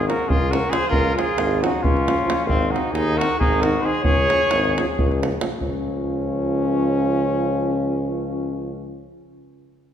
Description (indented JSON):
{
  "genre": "balkan folk, Balkan brass band",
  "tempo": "268 BPM (eighths)",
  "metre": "7/8",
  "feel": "straight",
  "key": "Db major",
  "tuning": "A4 = 436 Hz",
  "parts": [
    { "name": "dark cornet", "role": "melody", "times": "0.0-5.2 s", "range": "F4 to Db5", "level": "-23 LUFS", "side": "equal", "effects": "none" },
    { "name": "warm trumpet", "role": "second line", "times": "0.0-5.2 s", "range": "C4 to Ab4", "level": "-25 LUFS", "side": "equal", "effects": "none" },
    { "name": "warm tuba", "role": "bass", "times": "0.0-9.1 s", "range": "Ab1 to Eb2", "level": "-25 LUFS", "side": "equal", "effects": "none" },
    { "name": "clear French horn", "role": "accompaniment", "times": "0.1-9.1 s", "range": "C4 to Db4", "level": "-27 LUFS", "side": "left 4 dB", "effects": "none" },
    { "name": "warm euphonium", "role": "accompaniment", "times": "0.1-9.1 s", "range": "Eb3 to F3", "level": "-29 LUFS", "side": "right 5 dB", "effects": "none" },
    { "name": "davul", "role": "percussion", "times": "0.1-5.9 s", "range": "none", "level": "-24 LUFS", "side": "right 1 dB", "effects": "none" }
  ],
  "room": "wet concert hall reverb, RT60 2.3 s",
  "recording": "minimal, uncompressed stereo recording",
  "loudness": "-18 LUFS",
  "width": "side -9 dB against mid",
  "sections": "0.0-5.6 A section; 5.6-8.7 B section",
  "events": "none",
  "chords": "0.0 Db; 2.5 Ab; 4.0 Db",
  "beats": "0.02 0.24 0.46 0.69 | 0.91 1.13 1.36 1.58 1.80 2.02 2.25 | 2.47 2.69 2.92 3.14 3.36 3.59 3.81 | 4.03 4.26 4.48 4.71 4.93 5.15 5.38 | 5.60 5.83 6.05 6.27 6.50 6.72 6.95 | 7.17 7.40 7.62 7.85 8.07 8.30 8.52"
}